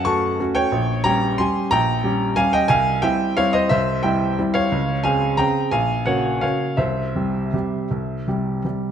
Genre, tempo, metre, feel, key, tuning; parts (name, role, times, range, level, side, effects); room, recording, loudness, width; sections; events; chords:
classical, piano waltz; 156-190 BPM; 3/4; rubato; A4 = 439 Hz
clear baby grand piano; solo; 0.0-8.9 s; Bb1 to C#6; -18 LUFS; equal
moderate scoring stage reverb, RT60 1.7 s; -18 LUFS; side -8 dB against mid
0.0-8.9 A section
0.0 F#m; 0.7 Gdim/Bb; 2.7 C; 4.7 Dbmaj7; 5.7 Gb/Bb; 6.8 C